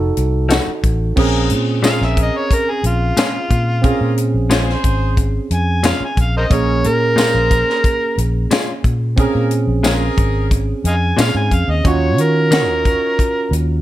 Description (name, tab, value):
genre	straight-eighth soul blues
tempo	90 BPM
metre	4/4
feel	straight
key	Bb minor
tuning	A4 = 440 Hz
part	tine electric piano	accompaniment	0.0-13.8 s	Bb3 to A4	-22 LUFS	right 5 dB	plate reverb
part	vintage muted fingered electric bass	bass	0.0-13.8 s	F1 to Eb3	-17 LUFS	equal	none
part	tight funk drum kit	drums	0.2-13.7 s	crash cymbal, hi-hat, kick drum, snare drum, tambourine	-18 LUFS	left 1 dB	none
part	direct-recorded clean electric guitar	stabs	0.5-12.7 s	Bb2 to Gb4	-21 LUFS	left 4 dB	tremolo, plate reverb
part	clear horn section	sustained chords	1.2-13.2 s	Gb3 to Db5	-27 LUFS	left 1 dB	plate reverb
part	overdriven harmonica	melody	1.9-13.5 s	F4 to Ab5	-19 LUFS	equal	plate reverb
room	light reverb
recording	none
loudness	-14 LUFS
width	side -14 dB against mid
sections	0.0-1.2 A section; 1.2-13.8 B section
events	harmonica solo 1.2-13.8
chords	0.0 F7b9; 1.2 Bbm7; 11.9 Ebm7